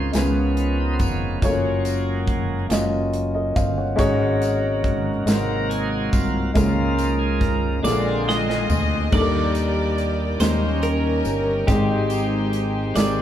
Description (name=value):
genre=slow gospel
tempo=47 BPM (dotted quarters)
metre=6/8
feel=straight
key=Db major, Eb major from 9.1 s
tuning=A4 = 440 Hz
part: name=warm grand piano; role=accompaniment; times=0.0-13.2 s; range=Ab2 to Gb5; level=-23 LUFS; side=left 1 dB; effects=none
part: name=bright tonewheel organ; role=sustained chords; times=0.0-13.2 s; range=C3 to D5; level=-29 LUFS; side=right 2 dB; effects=slow rotary speaker, overdrive
part: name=fingered electric bass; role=bass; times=0.0-13.2 s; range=F1 to Eb2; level=-24 LUFS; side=equal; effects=none
part: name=modern studio drum kit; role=drums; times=0.1-13.2 s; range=crash cymbal, hi-hat, kick drum, snare drum, toms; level=-25 LUFS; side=equal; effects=none
part: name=tambourine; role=percussion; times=0.2-13.2 s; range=none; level=-39 LUFS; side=left 5 dB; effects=none
part: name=twelve-string electric guitar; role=melody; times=7.8-13.2 s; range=G4 to Eb5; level=-28 LUFS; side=right 3 dB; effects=spring reverb
part: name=warm studio string section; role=melody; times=7.9-13.2 s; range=C4 to Eb5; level=-28 LUFS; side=left 2 dB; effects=none
part: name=warm French horn section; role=sustained chords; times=9.1-13.2 s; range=Eb3 to D5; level=-32 LUFS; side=equal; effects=none
room=moderate stone room reverb, RT60 1.3 s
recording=band playing live in one room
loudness=-19 LUFS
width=side -10 dB against mid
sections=0.0-9.1 A section; 9.1-13.2 B section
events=tonewheel organ solo 0.0-9.1; drum fill 7.8-9.1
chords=0.1 Db7; 1.4 Gbmaj7; 4.0 Ab7sus4; 5.3 Ab7; 6.6 Db6; 7.8 Bb7; 9.1 Ebmaj7; 10.4 Eb7; 11.7 Abmaj7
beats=0.15 | 1.43 2.71 | 4.00 5.28 | 6.56 7.84 | 9.12 10.40 | 11.68 12.96